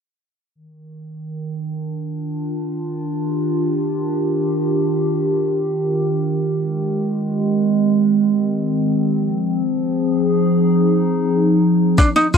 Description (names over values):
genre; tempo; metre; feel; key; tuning
folktronica; free time; none; none; Eb major; A4 = 439 Hz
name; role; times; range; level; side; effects
warbly tape-like pad; sustained chords; 0.6-12.4 s; Eb3 to Ab4; -17 LUFS; equal; chorus, built-in reverb
ukulele; arpeggios; 12.0-12.4 s; D4 to F4; -14 LUFS; equal; none
electronic kick drum; drums; 12.0-12.4 s; none; -13 LUFS; left 1 dB; none
shaker; drums; 12.0-12.4 s; none; -31 LUFS; left 1 dB; none
room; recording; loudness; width
moderate booth ambience, RT60 0.3 s; dry, close 1970s-style studio recording; -16 LUFS; side -6 dB against mid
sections
0.6-12.0 A section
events
none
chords
0.6 Ebmaj9; 6.3 Abmaj7/Eb; 9.1 Fm7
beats
free time